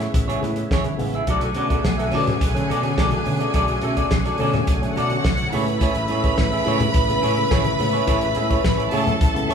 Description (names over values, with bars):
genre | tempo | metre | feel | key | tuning
disco | 106 BPM | 4/4 | straight | B dorian | A4 = 440 Hz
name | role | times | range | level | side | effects
semi-hollow electric guitar | accompaniment | 0.0-9.5 s | E4 to E5 | -25 LUFS | right 2 dB | none
overdriven tonewheel organ | sustained chords | 0.0-9.5 s | C#3 to F#4 | -28 LUFS | left 1 dB | chorus vibrato, slow rotary speaker
modern bright fingered electric bass | bass | 0.0-9.5 s | G#1 to B2 | -26 LUFS | equal | none
damped 70s drum kit | drums | 0.0-9.5 s | hi-hat, kick drum, snare drum | -23 LUFS | equal | none
barky tine electric piano | accompaniment | 0.1-9.5 s | A2 to C#4 | -28 LUFS | left 2 dB | medium stereo tremolo
congas | percussion | 0.1-9.5 s | none | -29 LUFS | left 4 dB | none
clear studio violin section | second line | 1.3-9.5 s | F#4 to B5 | -25 LUFS | equal | none
room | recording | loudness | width
wet large studio reverb, RT60 1.3 s | band playing live in one room, small room ambience | -18 LUFS | side -7 dB against mid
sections
0.0-1.3 A section; 1.3-9.5 B section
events
none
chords
0.0 Amaj7; 1.3 Bm7; 5.5 Amaj7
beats
0.14 0.71 | 1.27 1.84 2.41 2.98 | 3.54 4.11 4.68 5.24 | 5.81 6.38 6.94 7.51 | 8.08 8.64 9.21